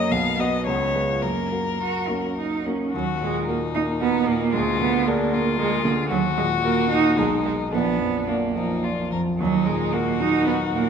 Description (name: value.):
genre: quick classical-period movement for piano trio.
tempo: 104-117 BPM.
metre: 3/4.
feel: rubato.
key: Eb minor.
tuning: A4 = 438 Hz.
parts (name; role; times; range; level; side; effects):
rich violin; melody; 0.0-10.9 s; D4 to E#5; -26 LUFS; left 6 dB; none.
clear cello; second line; 0.0-10.9 s; Gb3 to F#4; -23 LUFS; right 6 dB; none.
clear grand piano; accompaniment; 0.0-10.9 s; Bb1 to Eb5; -25 LUFS; left 1 dB; none.
room: wet recital hall reverb, RT60 1.7 s.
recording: minimal, uncompressed stereo recording.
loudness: -20 LUFS.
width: side -7 dB against mid.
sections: 0.0-2.9 A section; 2.9-10.9 B section.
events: none.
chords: 0.1 B; 0.7 C#7; 1.2 F#; 2.9 Ebm; 4.5 Bb7/D; 6.1 Ebm; 7.2 Abm/Cb; 7.7 Bb; 9.4 Ebm.